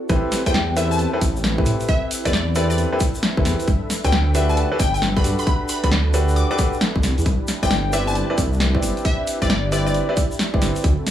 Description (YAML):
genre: UK garage, two-step garage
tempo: 134 BPM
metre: 4/4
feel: swing 65% on 16ths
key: A dorian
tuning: A4 = 440 Hz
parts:
  - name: warm analog pad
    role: sustained chords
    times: 0.0-11.1 s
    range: C4 to E5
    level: -31 LUFS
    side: right 2 dB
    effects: chorus, sidechain pumping
  - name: clear concert grand piano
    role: stabs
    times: 0.1-10.8 s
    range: C4 to D5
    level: -24 LUFS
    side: equal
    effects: vintage 12-bit sampler grit, dub echo
  - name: dark detuned saw bass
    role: bass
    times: 0.1-10.9 s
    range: G1 to A2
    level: -21 LUFS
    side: equal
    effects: none
  - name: electronic kick drum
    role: drums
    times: 0.1-11.0 s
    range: none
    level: -22 LUFS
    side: equal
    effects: none
  - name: punchy analog drum machine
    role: drums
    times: 0.1-11.1 s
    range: hi-hat, rim click, snare drum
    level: -24 LUFS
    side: equal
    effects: none
  - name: egg shaker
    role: percussion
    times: 0.1-11.1 s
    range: none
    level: -33 LUFS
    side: left 3 dB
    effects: none
  - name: glassy wavetable pluck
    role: melody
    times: 0.5-9.9 s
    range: D5 to D6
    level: -26 LUFS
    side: left 2 dB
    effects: chorus, dub echo
room: little or no reverb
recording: studio ambience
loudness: -17 LUFS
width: side -11 dB against mid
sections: 0.1-11.1 A section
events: drop 0.1-11.1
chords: 0.1 Am7; 3.7 Gmaj7; 7.0 Cmaj7